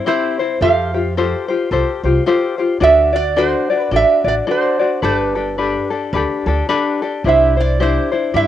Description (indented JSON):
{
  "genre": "Hawaiian",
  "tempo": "109 BPM",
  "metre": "4/4",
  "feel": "swing 59% on 8ths",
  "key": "C major",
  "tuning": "A4 = 440 Hz",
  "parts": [
    { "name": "tenor ukulele", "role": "accompaniment", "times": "0.0-8.5 s", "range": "C4 to D5", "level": "-17 LUFS", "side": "left 5 dB", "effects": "none" },
    { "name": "metal-body resonator slide guitar", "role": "melody", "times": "0.1-8.5 s", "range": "B4 to F5", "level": "-16 LUFS", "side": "right 5 dB", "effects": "cassette tape" },
    { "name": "upright bass", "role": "bass", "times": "0.6-8.4 s", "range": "G1 to G2", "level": "-20 LUFS", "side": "right 1 dB", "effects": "none" }
  ],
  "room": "moderate spring reverb, RT60 1.3 s, small room ambience",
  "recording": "home recording on cassette, nothing above 10.5 kHz",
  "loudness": "-14 LUFS",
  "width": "side -11 dB against mid",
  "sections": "0.0-8.5 A section",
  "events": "none",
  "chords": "0.0 C; 0.6 Fadd9; 2.8 D; 5.0 Gadd9; 7.2 Cadd9"
}